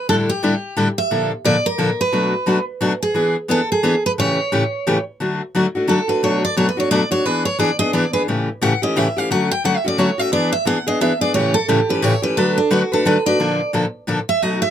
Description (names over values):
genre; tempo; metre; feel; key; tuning
jazz; 176 BPM; 3/4; swing 60% on 8ths; D major; A4 = 444 Hz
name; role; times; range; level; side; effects
picked steel-string acoustic guitar; melody; 0.0-14.7 s; D4 to G5; -19 LUFS; right 2 dB; none
picked steel-string acoustic guitar; accompaniment; 0.1-14.6 s; A2 to B4; -18 LUFS; left 2 dB; none
room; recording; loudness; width
light reverb; none; -16 LUFS; side -9 dB against mid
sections
0.0-5.2 A section; 5.2-13.4 B section; 13.4-14.7 B section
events
steel-string acoustic guitar solo 5.2-14.7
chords
0.1 A7sus4; 1.1 Bbmaj7; 2.1 Bm7; 3.1 E7; 4.2 A7; 5.2 D; 6.2 Bm7; 7.2 E7; 8.3 A7; 9.3 Dmaj7; 10.3 E7; 11.3 A7; 12.4 D6; 13.4 Bbmaj7